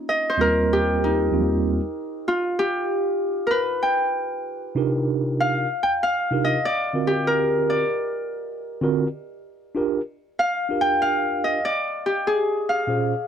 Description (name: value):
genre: hip hop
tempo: 96 BPM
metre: 4/4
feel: swing 62% on 16ths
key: Eb major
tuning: A4 = 444 Hz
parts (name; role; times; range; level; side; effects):
- Celtic harp; melody; 0.0-13.3 s; Db4 to G5; -22 LUFS; left 1 dB; none
- mellow tine electric piano; accompaniment; 0.4-13.1 s; Eb2 to C5; -23 LUFS; right 3 dB; medium stereo tremolo
room: light reverb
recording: dry, close 1970s-style studio recording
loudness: -20 LUFS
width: side -8 dB against mid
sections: 0.0-13.3 A section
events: harp solo 0.0-13.3; break 2.3-4.8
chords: 0.0 Eb69; 2.3 N.C.; 4.8 Cm11; 7.3 D7alt; 9.8 Gm7; 12.3 Bbm7